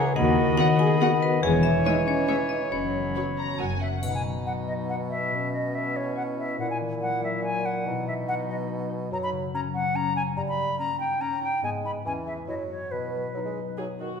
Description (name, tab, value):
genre	cinematic, playful, whimsical film cue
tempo	142 BPM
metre	3/4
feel	straight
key	B major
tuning	A4 = 440 Hz
part	marimba with hard mallets	melody	0.0-3.6 s	G#4 to G#5	-28 LUFS	left 4 dB	none
part	clear clarinet	second line	0.0-13.9 s	B3 to D#5	-35 LUFS	left 1 dB	none
part	concert flute	second line	0.0-13.8 s	B4 to B5	-30 LUFS	left 1 dB	none
part	warm bassoon	accompaniment	0.0-14.1 s	A#2 to G#3	-32 LUFS	right 4 dB	none
part	dark French horn section	sustained chords	0.0-3.6 s	G#3 to G#4	-29 LUFS	left 1 dB	none
part	concert harp	arpeggios	0.0-14.2 s	E2 to C#6	-30 LUFS	left 8 dB	none
part	muted studio cello section	bass	0.2-4.0 s	D#2 to F#2	-30 LUFS	right 4 dB	none
part	muted studio double bass section	bass	0.2-4.0 s	E1 to D#2	-33 LUFS	right 5 dB	none
part	muted studio violin section	melody	0.6-4.0 s	C#5 to A#5	-35 LUFS	left 3 dB	none
part	muted studio violin section	second line	0.6-3.7 s	A#4 to D#5	-40 LUFS	right 2 dB	none
part	muted studio viola section	accompaniment	0.6-3.7, 13.8-14.2 s	F#3 to G#4	-36 LUFS	right 3 dB	none
part	triangle	percussion	4.0-4.8 s	none	-43 LUFS	left 3 dB	none
room	wet recital hall reverb, RT60 1.5 s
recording	minimal, uncompressed stereo recording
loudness	-24 LUFS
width	side -6 dB against mid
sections	0.0-4.0 A section; 4.0-14.2 B section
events	none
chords	0.2 B/D#; 1.4 C#m/E; 2.7 F#sus4; 3.6 F#; 4.0 B; 5.3 C#m7/B; 6.6 F#7/A#; 7.9 B; 9.1 F#5; 10.4 D#7/G; 11.6 G#m; 12.1 C#m7/E; 12.5 F#5; 12.9 B